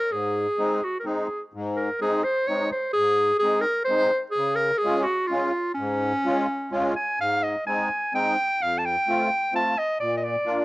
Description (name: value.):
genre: alpine folk, alpine dance band.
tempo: 128 BPM.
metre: 3/4.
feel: straight.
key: Db major, Ab major from 7.2 s.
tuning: A4 = 440 Hz.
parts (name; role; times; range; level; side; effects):
clear clarinet; melody; 0.0-10.6 s; Db4 to A5; -23 LUFS; equal; cassette tape.
musette accordion; accompaniment; 0.1-10.6 s; F2 to F4; -28 LUFS; left 1 dB; cassette tape.
room: moderate small room ambience, RT60 0.5 s.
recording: home recording on cassette.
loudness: -22 LUFS.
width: side -21 dB against mid.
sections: 0.0-7.2 A section; 7.2-10.6 B section.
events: none.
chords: 0.1 Ab; 4.4 Db; 7.2 Ab; 8.6 F; 10.0 Bb.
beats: | 0.11 0.58 1.06 | 1.54 2.02 2.49 | 2.96 3.43 3.90 | 4.36 4.83 5.30 | 5.77 6.24 6.72 | 7.20 7.67 8.14 | 8.61 9.08 9.54 | 10.00 10.47.